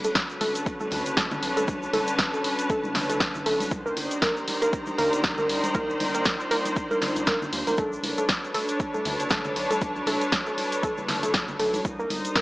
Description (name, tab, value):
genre	deep house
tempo	118 BPM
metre	4/4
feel	swing 57% on 16ths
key	B minor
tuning	A4 = 437 Hz
part	warbly tape-like pad	sustained chords	0.0-12.4 s	C#4 to D5	-33 LUFS	equal	chorus, built-in reverb, sidechain pumping
part	warbly dusty pluck	arpeggios	0.0-12.4 s	A4 to Bb4	-28 LUFS	equal	chorus, cassette tape, sidechain pumping, tape echo
part	punchy analog drum machine	drums	0.0-12.4 s	hi-hat, snare drum	-28 LUFS	equal	none
part	congas	percussion	0.0-12.2 s	none	-38 LUFS	equal	none
part	egg shaker	percussion	0.0-12.4 s	none	-42 LUFS	left 1 dB	none
part	bright symphonic string section	texture	0.0-12.4 s	D3 to Bb5	-30 LUFS	equal	sidechain pumping
part	electronic kick drum	drums	0.2-12.4 s	none	-30 LUFS	equal	overdrive
part	round analog bass	bass	0.9-12.2 s	F#1 to Eb2	-39 LUFS	equal	sidechain pumping
room	moderate lush hall reverb, RT60 2.3 s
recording	small speaker sound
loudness	-23 LUFS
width	side -20 dB against mid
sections	0.0-12.4 A section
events	none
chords	0.0 Bm9; 3.7 Cm9; 7.8 Bm9; 11.8 Cm9